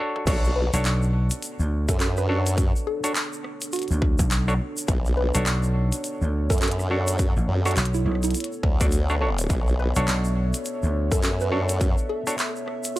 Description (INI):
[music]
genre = glitch hop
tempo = 104 BPM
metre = 4/4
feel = swing 60% on 16ths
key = B minor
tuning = A4 = 442 Hz
[part]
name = mellow clav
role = stabs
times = 0.0-12.4 s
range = D4 to D5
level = -30 LUFS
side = equal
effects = sidechain pumping, dub echo
[part]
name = glitchy drum kit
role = drums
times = 0.2-13.0 s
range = crash cymbal, handclaps, hi-hat, rim click, toms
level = -30 LUFS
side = equal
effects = overdrive, high-pass filter on hats, high-pass filter on snare, high-pass filter on toms, high-pass filter on cymbals
[part]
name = dark analog pad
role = sustained chords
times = 0.3-13.0 s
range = B3 to E5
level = -34 LUFS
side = equal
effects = chorus, sidechain pumping
[part]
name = formant-sweep wobble bass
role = bass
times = 0.3-12.0 s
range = B1 to F#2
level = -24 LUFS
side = equal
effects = chorus, high-pass filter
[part]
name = electronic kick drum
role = drums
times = 0.3-11.9 s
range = none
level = -23 LUFS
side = equal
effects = overdrive
[part]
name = tube shaker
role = percussion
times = 0.3-13.0 s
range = none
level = -34 LUFS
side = equal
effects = none
[part]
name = woody wave-folded pluck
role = melody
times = 0.6-13.0 s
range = E4 to B4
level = -32 LUFS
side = right 2 dB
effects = chorus, dub echo
[part]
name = vintage slap bass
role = bass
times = 0.7-11.1 s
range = A1 to D2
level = -22 LUFS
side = equal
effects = tube saturation
[sound]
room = digital ambience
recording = none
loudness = -21 LUFS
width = side -16 dB against mid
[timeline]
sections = 0.3-13.0 A section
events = break 0.0; drum fill 0.0; drop 0.3-13.0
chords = 0.3 Bm9